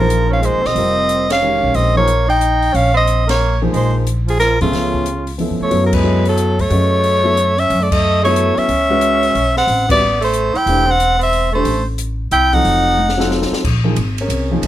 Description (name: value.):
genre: modal jazz.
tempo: 182 BPM.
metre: 3/4.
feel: swing 64% on 8ths.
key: Bb dorian, F# dorian from 5.7 s.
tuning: A4 = 438 Hz.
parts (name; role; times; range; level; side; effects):
clear soprano saxophone; melody; 0.0-13.3 s; F4 to G5; -16 LUFS; left 1 dB; none.
breathy tenor saxophone; second line; 0.0-13.3 s; Db3 to E4; -20 LUFS; right 6 dB; none.
warm grand piano; accompaniment; 0.0-14.7 s; C3 to E5; -20 LUFS; left 1 dB; none.
upright bass; bass; 0.0-14.7 s; E1 to Ab2; -18 LUFS; equal; none.
open jazz drum kit; drums; 0.1-14.7 s; crash cymbal, hi-hat, kick drum, ride cymbal, snare drum, toms; -25 LUFS; left 1 dB; none.
room: light reverb.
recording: close, detailed microphones.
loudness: -13 LUFS.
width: side -13 dB against mid.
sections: 0.0-5.7 A section; 5.7-13.6 B section; 13.6-14.7 C section.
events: band accent 1.2, 3.2, 5.9, 7.9, 9.8; drum fill 13.0-13.6.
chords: 0.0 Bbm11; 4.7 Db7alt; 5.7 F#m9; 9.7 Am7; 12.6 F7b9; 13.6 Bbm11.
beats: 0.09 0.42 | 0.75 1.08 1.42 | 1.75 2.08 2.41 | 2.74 3.07 3.40 | 3.73 4.06 4.39 | 4.72 5.05 5.38 | 5.71 6.04 6.37 | 6.70 7.03 7.37 | 7.70 8.03 8.36 | 8.69 9.02 9.35 | 9.68 10.01 10.34 | 10.66 10.99 11.32 | 11.65 11.98 12.31 | 12.64 12.97 13.30 | 13.63 13.96 14.29 | 14.62.